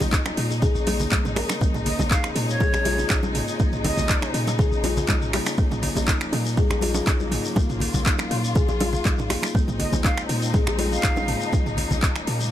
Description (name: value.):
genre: afro house.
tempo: 121 BPM.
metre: 4/4.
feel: straight.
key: Bb minor.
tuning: A4 = 440 Hz.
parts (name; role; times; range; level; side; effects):
warm studio string section; sustained chords; 0.0-12.5 s; C3 to F4; -30 LUFS; left 2 dB; sidechain pumping.
warm 808-style bass; bass; 0.0-12.5 s; Bb1 to Bb2; -28 LUFS; equal; sidechain pumping.
bongos; percussion; 0.0-11.3 s; none; -31 LUFS; right 3 dB; none.
congas; percussion; 0.0-12.5 s; none; -31 LUFS; left 3 dB; none.
shekere; percussion; 0.0-12.5 s; none; -36 LUFS; left 4 dB; none.
buzzing kalimba; arpeggios; 0.1-11.4 s; Bb3 to Bb4; -29 LUFS; left 2 dB; sidechain pumping, tape echo.
deep house drum kit; drums; 0.1-12.4 s; finger snaps, handclaps, hi-hat, toms; -27 LUFS; right 1 dB; overdrive.
electronic kick drum; drums; 0.1-12.1 s; none; -22 LUFS; equal; overdrive.
bright silver concert flute; melody; 1.9-4.3, 9.8-11.5 s; Db5 to F5; -31 LUFS; right 2 dB; tape echo.
room: small room ambience.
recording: none.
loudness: -20 LUFS.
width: side -12 dB against mid.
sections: 0.0-12.5 A section.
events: none.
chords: 0.0 Ebm7/Bb; 1.6 Bbm11; 5.6 Ebm7/Bb; 9.5 Bbm11.